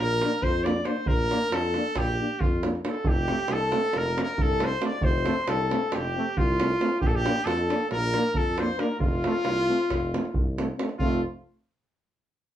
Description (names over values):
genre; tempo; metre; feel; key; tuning
balkan folk, Balkan brass band; 272 BPM (eighths); 9/8; straight; F major; A4 = 440 Hz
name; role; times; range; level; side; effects
bright trumpet; melody; 0.0-11.2 s; F4 to D5; -29 LUFS; right 1 dB; none
mellow flugelhorn; second line; 0.0-11.2 s; F4 to D5; -31 LUFS; left 3 dB; none
mellow tuba; bass; 0.0-11.2 s; F1 to F2; -30 LUFS; equal; none
bright trombone; accompaniment; 0.2-11.2 s; A3 to Bb3; -33 LUFS; right 3 dB; none
mellow euphonium; accompaniment; 0.2-11.2 s; C4 to D4; -32 LUFS; left 4 dB; none
davul; percussion; 0.2-11.2 s; none; -29 LUFS; right 1 dB; none
room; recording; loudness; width
wet studio reverb, RT60 0.5 s; heard from further back in the room; -23 LUFS; side -11 dB against mid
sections
0.0-11.0 A section; 11.0-12.6 B section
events
none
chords
0.0 Bb; 3.0 F; 7.0 Bb; 9.0 F